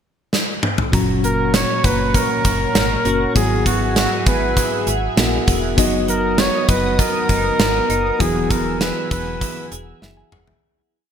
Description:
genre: 1980s-style pop.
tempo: 99 BPM.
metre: 4/4.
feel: straight.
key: E lydian.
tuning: A4 = 440 Hz.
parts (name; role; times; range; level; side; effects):
gated 80s drum kit; drums; 0.3-10.6 s; hi-hat, kick drum, snare drum, toms; -19 LUFS; equal; none.
mellow tine electric piano; accompaniment; 0.9-10.8 s; G#2 to A#5; -23 LUFS; left 2 dB; medium stereo tremolo, shimmer reverb.
phased analog pad; sustained chords; 1.2-10.6 s; B3 to E6; -27 LUFS; right 1 dB; phaser, chorus, shimmer reverb.
twelve-string electric guitar; riff; 0.9-11.1 s; F#3 to G#4; -27 LUFS; right 4 dB; analog chorus.
slap-like FM bass; bass; 0.9-10.5 s; E1 to A#1; -24 LUFS; equal; none.
warm flugelhorn; melody; 1.2-9.7 s; F#4 to C#5; -21 LUFS; equal; shimmer reverb.
room: moderate plate reverb, RT60 1.4 s, small room ambience.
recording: bright 1980s-style digital production.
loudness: -15 LUFS.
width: side -8 dB against mid.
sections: 0.0-0.9 pickup bar; 0.9-10.6 chorus.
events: drum fill 0.3-0.9, 10.0-10.6; fade-out 8.2-10.6.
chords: 0.0 N.C.; 0.9 F#; 3.4 Eadd9/G#; 5.8 B/F#; 8.2 Eadd9.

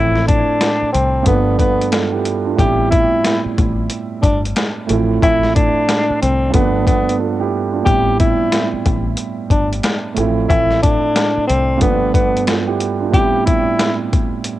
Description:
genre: hip hop, boom-bap hip-hop.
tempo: 91 BPM.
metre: 4/4.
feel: swing 63% on 16ths.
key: A minor.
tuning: A4 = 444 Hz.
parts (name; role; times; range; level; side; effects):
breathy tenor saxophone; melody; 0.0-14.0 s; B3 to G4; -18 LUFS; left 1 dB; high-pass filter, low-pass filter, cassette tape, analog delay.
dark grand piano; accompaniment; 0.0-14.6 s; G2 to A4; -19 LUFS; right 5 dB; cassette tape, high-pass filter, low-pass filter.
deep dub fingered electric bass; bass; 0.0-12.1 s; G1 to C2; -20 LUFS; left 1 dB; none.
dusty soul sampler-style drum kit; drums; 0.2-14.6 s; hi-hat, kick drum, snare drum; -18 LUFS; left 1 dB; overdrive.
room: light reverb, small room ambience.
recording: home recording on cassette.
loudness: -13 LUFS.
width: side -14 dB against mid.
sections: 0.0-7.9 A section; 7.9-14.6 A section.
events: break 7.2-7.9.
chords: 0.0 Dm7/A; 1.3 G7; 2.6 Am7; 4.9 Dm7/A; 6.5 G7; 7.9 Am7; 10.2 Dm7/A; 11.8 G7; 13.1 Am7.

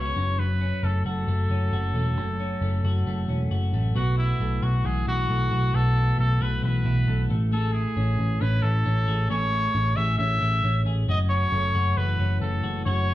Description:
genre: jangly indie pop.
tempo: 135 BPM.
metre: 4/4.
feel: straight.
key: unclear.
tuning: A4 = 441 Hz.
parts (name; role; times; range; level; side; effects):
clear trumpet; melody; 0.0-13.1 s; E4 to E5; -28 LUFS; left 1 dB; none.
twelve-string electric guitar; arpeggios; 0.0-13.1 s; F#2 to G#4; -29 LUFS; left 1 dB; digital delay.
vintage muted picked electric bass; bass; 0.0-13.1 s; E1 to C#2; -24 LUFS; equal; none.
room: wet large studio reverb, RT60 0.9 s.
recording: band playing live in one room.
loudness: -22 LUFS.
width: side -15 dB against mid.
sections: 0.0-4.0 A section; 4.0-13.1 B section.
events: none.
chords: 0.2 F#m; 4.0 B7sus4; 7.3 Amaj7; 11.1 F#m7.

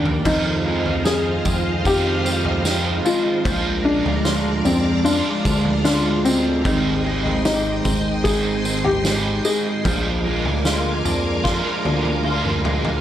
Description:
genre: dream pop.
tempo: 75 BPM.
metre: 4/4.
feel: straight.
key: F dorian.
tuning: A4 = 439 Hz.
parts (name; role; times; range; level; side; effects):
felt-muted upright piano; melody; 0.0-11.8 s; C4 to Ab4; -23 LUFS; left 2 dB; tape echo.
overdriven semi-hollow guitar; accompaniment; 0.0-13.0 s; F2 to G4; -25 LUFS; right 5 dB; harmonic tremolo, lush chorus.
string machine, full ensemble; sustained chords; 0.0-13.0 s; Eb3 to D6; -25 LUFS; equal; ensemble chorus.
semi-hollow electric guitar; arpeggios; 0.0-13.0 s; Eb3 to Ab4; -28 LUFS; left 2 dB; ensemble chorus, tape echo.
fat analog bass; bass; 0.0-13.0 s; Ab1 to F2; -25 LUFS; equal; none.
loose indie drum kit; drums; 0.1-13.0 s; crash cymbal, kick drum, snare drum, tambourine, toms; -25 LUFS; equal; none.
room: small room ambience.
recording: none.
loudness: -17 LUFS.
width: side -11 dB against mid.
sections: 0.3-13.0 A section.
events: drum fill 0.0, 11.5-13.0.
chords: 0.3 Fm7; 3.5 Bb7; 6.7 Abmaj7; 9.9 Bb7.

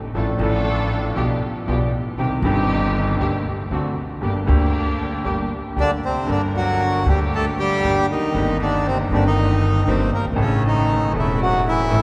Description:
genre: tango.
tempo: 118 BPM.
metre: 4/4.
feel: rubato.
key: unclear.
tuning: A4 = 437 Hz.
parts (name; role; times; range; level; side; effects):
clear concert grand piano; accompaniment; 0.1-12.0 s; E1 to Bb4; -24 LUFS; equal; none.
upright bass; bass; 0.1-12.0 s; E1 to D2; -26 LUFS; equal; none.
muted studio string section; stabs; 0.2-12.0 s; A3 to Bb4; -31 LUFS; equal; none.
bandoneon; melody; 5.8-12.0 s; C3 to Bb4; -23 LUFS; equal; none.
room: wet cathedral reverb, RT60 6.3 s.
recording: recorded in a church or concert hall.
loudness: -20 LUFS.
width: mono.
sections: 0.0-6.3 A section; 6.3-12.0 B section.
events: none.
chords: 0.1 Dm/A; 1.2 G7/B; 2.2 Cm; 3.2 Gm/D; 3.7 D7; 4.2 Gm; 8.3 Cm7/G; 10.4 A.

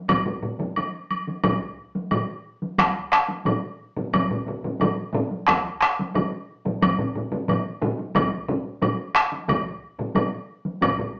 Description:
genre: japanese traditional, taiko drum ensemble.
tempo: 89 BPM.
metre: 4/4.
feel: straight.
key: none.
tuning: none.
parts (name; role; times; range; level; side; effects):
solo taiko drums; percussion; 0.1-11.1 s; none; -25 LUFS; equal; none.
taiko ensemble; percussion; 0.1-11.0 s; none; -27 LUFS; equal; none.
taiko ensemble; percussion; 0.1-11.1 s; none; -27 LUFS; equal; none.
taiko ensemble; percussion; 0.1-11.0 s; none; -28 LUFS; equal; none.
woodblock; percussion; 0.1-11.0 s; none; -26 LUFS; equal; none.
room: wet studio reverb, RT60 0.7 s.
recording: band playing live in one room, small speaker sound.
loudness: -22 LUFS.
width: side -28 dB against mid.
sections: 0.0-11.2 A section.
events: none.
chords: none.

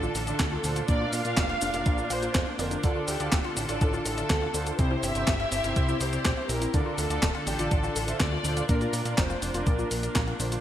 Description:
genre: italo disco.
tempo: 123 BPM.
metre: 4/4.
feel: straight.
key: D minor.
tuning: A4 = 442 Hz.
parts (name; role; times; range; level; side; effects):
dark studio violin section; melody; 0.0-10.4 s; G4 to F5; -33 LUFS; equal; digital delay.
rich studio string section; sustained chords; 0.0-10.6 s; D3 to A4; -35 LUFS; left 1 dB; none.
warbly dusty pluck; arpeggios; 0.0-10.6 s; C4 to F5; -36 LUFS; left 2 dB; chorus, digital delay.
analog synth brass; stabs; 0.0-10.6 s; Bb2 to F5; -34 LUFS; right 2 dB; chorus.
fat analog bass; bass; 0.0-10.6 s; D1 to Bb2; -32 LUFS; equal; none.
clean 12-bit digital drum machine; drums; 0.0-10.6 s; cabasa, handclaps, hi-hat, snare drum; -31 LUFS; equal; studio reverb, gated reverb.
electronic kick drum; drums; 0.4-10.3 s; none; -27 LUFS; equal; studio reverb.
room: moderate lush hall reverb, RT60 2.0 s.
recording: bright 1980s-style digital production.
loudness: -24 LUFS.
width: side -11 dB against mid.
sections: 0.0-10.6 A section.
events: none.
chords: 0.0 Dm; 0.9 Bb; 2.8 Dm; 4.8 C; 6.7 Dm; 8.7 Bb.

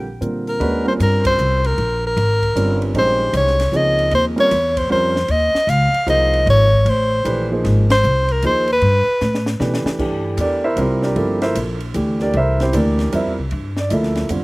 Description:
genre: modal jazz.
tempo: 153 BPM.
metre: 3/4.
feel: swing 65% on 8ths.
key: Eb mixolydian, C mixolydian from 10.0 s.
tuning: A4 = 440 Hz.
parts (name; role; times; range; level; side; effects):
clear soprano saxophone; melody; 0.0-9.6 s; G4 to F5; -17 LUFS; equal; slapback echo.
warm grand piano; accompaniment; 0.0-14.4 s; D3 to E5; -21 LUFS; right 2 dB; none.
upright bass; bass; 0.0-14.4 s; G1 to B2; -19 LUFS; equal; none.
compact cocktail drum kit; drums; 0.2-14.4 s; crash cymbal, hi-hat, kick drum, ride cymbal, snare drum; -30 LUFS; equal; none.
room: little or no reverb.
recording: recorded outdoors, with no room sound.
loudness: -15 LUFS.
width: side -23 dB against mid.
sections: 0.6-10.0 A section; 10.0-14.4 B section.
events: band accent 1.2, 7.8; drum fill 9.2-10.0.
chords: 0.0 Bb69; 0.6 Eb13; 5.3 Ab; 8.8 Gadd9; 10.0 C9.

